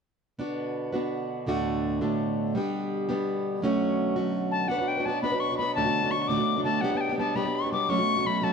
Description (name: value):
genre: celtic folk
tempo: 112 BPM (dotted quarters)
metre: 6/8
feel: straight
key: B minor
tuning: A4 = 440 Hz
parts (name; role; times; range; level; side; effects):
- picked plugged-in steel-string acoustic guitar; accompaniment; 0.4-8.5 s; D2 to B4; -27 LUFS; right 1 dB; none
- pedal harmonium; drone; 0.4-8.5 s; B2 to F#3; -37 LUFS; right 1 dB; none
- reedy tin whistle; melody; 4.5-8.5 s; F#5 to D6; -27 LUFS; left 4 dB; slapback echo
room: light reverb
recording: dark, warm production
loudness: -25 LUFS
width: side -6 dB against mid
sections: 0.4-4.7 A section; 4.7-8.5 B section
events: none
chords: 0.4 Bm; 1.5 D; 2.5 G; 3.6 F#m; 4.7 Bm; 5.8 D; 6.8 G; 7.9 F#m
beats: | 0.40 0.94 | 1.47 2.01 | 2.55 3.08 | 3.62 4.16 | 4.69 5.23 | 5.76 6.30 | 6.83 7.36 | 7.90 8.43